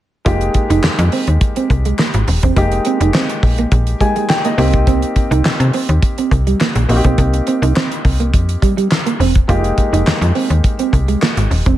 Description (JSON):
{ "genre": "early-eighties boogie funk", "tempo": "104 BPM", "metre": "4/4", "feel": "straight", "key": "F minor", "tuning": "A4 = 440 Hz", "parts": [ { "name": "warm grand piano", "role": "accompaniment", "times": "0.2-11.8 s", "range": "Ab3 to Ab5", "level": "-21 LUFS", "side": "left 2 dB", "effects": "none" }, { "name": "electric guitar at the edge of break-up", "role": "riff", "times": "0.3-11.8 s", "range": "G3 to F4", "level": "-20 LUFS", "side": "right 6 dB", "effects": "analog chorus" }, { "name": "slap-like FM bass", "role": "bass", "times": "0.3-11.8 s", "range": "Eb1 to C3", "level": "-14 LUFS", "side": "equal", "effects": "none" }, { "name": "damped 70s drum kit", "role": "drums", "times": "0.3-11.8 s", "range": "handclaps, hi-hat, kick drum, snare drum", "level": "-16 LUFS", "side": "equal", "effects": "gated reverb" } ], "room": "small room ambience", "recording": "none", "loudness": "-12 LUFS", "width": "side -13 dB against mid", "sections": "0.3-11.8 A section", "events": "grand piano fill 3.7-4.9", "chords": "0.3 Fm11; 4.6 Cm7; 9.5 Fm11" }